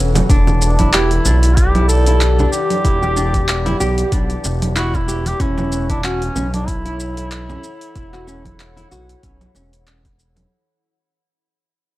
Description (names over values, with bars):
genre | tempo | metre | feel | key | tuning
organic downtempo | 94 BPM | 4/4 | swing 56% on 16ths | unclear | A4 = 437 Hz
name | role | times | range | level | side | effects
warbly tape-like pad | sustained chords | 0.0-10.5 s | E3 to F#5 | -26 LUFS | left 2 dB | chorus, built-in reverb, phaser, sidechain pumping
smooth gliding synth bass | bass | 0.0-10.4 s | E1 to B1 | -17 LUFS | equal | sidechain pumping
congas | percussion | 0.1-10.5 s | none | -26 LUFS | right 2 dB | none
deep house drum kit | drums | 0.2-10.5 s | congas, handclaps, hi-hat, shaker | -21 LUFS | right 1 dB | none
nylon-string guitar | arpeggios | 0.3-10.0 s | C#4 to G4 | -24 LUFS | right 1 dB | analog delay
electronic kick drum | drums | 0.3-10.2 s | none | -17 LUFS | equal | none
warm duduk | melody | 0.6-9.9 s | C#4 to A4 | -23 LUFS | right 1 dB | vintage 12-bit sampler grit, tape echo
room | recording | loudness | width
little or no reverb | dry, gritty hardware recording | -14 LUFS | side -16 dB against mid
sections
0.0-10.5 A section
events
fade-out 0.3-10.5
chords
0.3 Em7; 5.4 F#m7/E